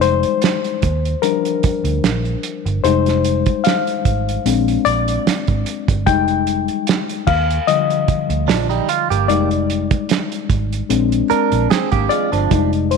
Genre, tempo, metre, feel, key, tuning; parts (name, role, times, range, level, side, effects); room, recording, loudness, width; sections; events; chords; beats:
lush 1970s-style soul; 74 BPM; 4/4; swing 54% on 16ths; F dorian; A4 = 440 Hz
reed electric piano; accompaniment; 0.0-13.0 s; D3 to G5; -18 LUFS; left 10 dB
vintage muted fingered electric bass; bass; 0.0-13.0 s; F1 to Eb2; -20 LUFS; right 2 dB
cloth-damped thuddy drum kit; drums; 0.0-13.0 s; crash cymbal, hi-hat, kick drum, snare drum; -20 LUFS; right 6 dB
direct-recorded clean electric guitar; riff; 8.5-12.7 s; F3 to Bb4; -19 LUFS; right 15 dB; wide subtle chorus
light reverb; 1960s-style stereo with parts hard left and right; -15 LUFS; side -5 dB against mid
0.0-13.0 A section
reed electric piano solo 0.0-13.0
0.0 Fm9; 0.8 Ebmaj7; 2.8 Fm9; 4.5 Bb7; 6.1 Fm9; 7.3 Ebmaj7; 9.3 Fm9; 10.9 Bb7
0.43 1.23 2.04 | 2.84 3.65 4.45 5.26 | 6.07 6.87 7.68 8.48 | 9.29 10.09 10.90 11.71 | 12.51